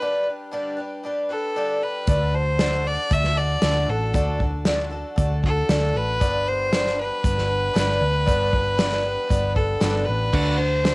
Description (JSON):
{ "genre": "folk rock and heartland rock", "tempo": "116 BPM", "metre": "4/4", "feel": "straight", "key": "G major", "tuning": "A4 = 439 Hz", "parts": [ { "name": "clear fiddle", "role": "melody", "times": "0.0-10.9 s", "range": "A4 to E5", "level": "-24 LUFS", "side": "equal", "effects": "cassette tape" }, { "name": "picked twelve-string acoustic guitar", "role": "accompaniment", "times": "0.0-10.9 s", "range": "G2 to B4", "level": "-27 LUFS", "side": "equal", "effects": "cassette tape" }, { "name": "hollow-body short-scale fingered electric bass", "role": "bass", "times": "2.1-10.9 s", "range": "G1 to D2", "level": "-24 LUFS", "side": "equal", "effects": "none" }, { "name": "loose indie drum kit", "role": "drums", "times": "2.1-10.9 s", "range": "crash cymbal, hi-hat, kick drum, snare drum", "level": "-24 LUFS", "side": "equal", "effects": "none" }, { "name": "electric guitar at the edge of break-up", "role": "riff", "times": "10.3-10.9 s", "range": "D3 to F#4", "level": "-26 LUFS", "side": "right 3 dB", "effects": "cassette tape" } ], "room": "light reverb", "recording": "home recording on cassette", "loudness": "-20 LUFS", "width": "side -24 dB against mid", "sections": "0.0-10.3 A section", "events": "none", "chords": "0.0 G; 2.1 D; 6.2 G; 10.3 D" }